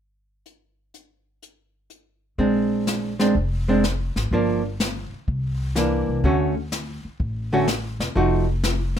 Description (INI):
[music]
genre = jazz, small-group swing and bop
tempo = 124 BPM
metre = 4/4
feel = swing 68% on 8ths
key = unclear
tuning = A4 = 442 Hz
[part]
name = jazz brush drum kit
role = drums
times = 0.5-9.0 s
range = brushed snare drum, hi-hat, kick drum, snare drum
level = -27 LUFS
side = left 1 dB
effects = none
[part]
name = archtop guitar, miked and amplified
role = accompaniment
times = 2.4-8.5 s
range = D3 to F#4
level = -20 LUFS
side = right 1 dB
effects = none
[part]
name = upright bass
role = bass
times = 2.4-9.0 s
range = E1 to D2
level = -26 LUFS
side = equal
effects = none
[sound]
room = moderate studio reverb, RT60 0.6 s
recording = rough home demo mix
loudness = -20 LUFS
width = side -9 dB against mid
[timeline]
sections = 0.5-2.4 A section; 2.4-9.0 B section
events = none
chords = 0.5 N.C.; 2.4 Bb9; 4.3 Gm7; 5.3 C9; 6.2 Dmaj7; 8.2 F7b9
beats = | 0.46 0.94 1.42 1.91 | 2.39 2.87 3.35 3.83 | 4.32 4.80 5.28 5.76 | 6.24 6.72 7.21 7.69 | 8.17 8.65